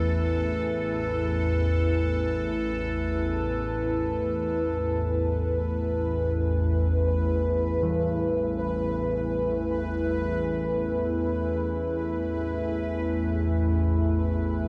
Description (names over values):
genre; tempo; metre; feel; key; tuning
dark ambient drone; free time; none; none; unclear; A4 = 440 Hz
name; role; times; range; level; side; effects
dark analog pad; sustained chords; 0.0-14.7 s; A3 to B4; -31 LUFS; equal; chorus
organ-like drone; drone; 0.0-14.7 s; A1 to E2; -30 LUFS; equal; ensemble chorus, built-in reverb
bubbling stepped-filter texture; texture; 0.0-14.7 s; A4 to B4; -37 LUFS; equal; chorus, built-in reverb
carillon bells; arpeggios; 7.8-14.5 s; E3; -38 LUFS; equal; delay
room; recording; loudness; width
wet cathedral reverb, RT60 6.0 s; dark, warm production; -27 LUFS; mono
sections
0.0-4.8 A section; 4.8-14.7 B section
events
filter sweep on synth drone 0.0-4.8; fade-out on synth texture 4.8-14.7; fade-out on church bells 4.8-14.7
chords
0.0 Asus2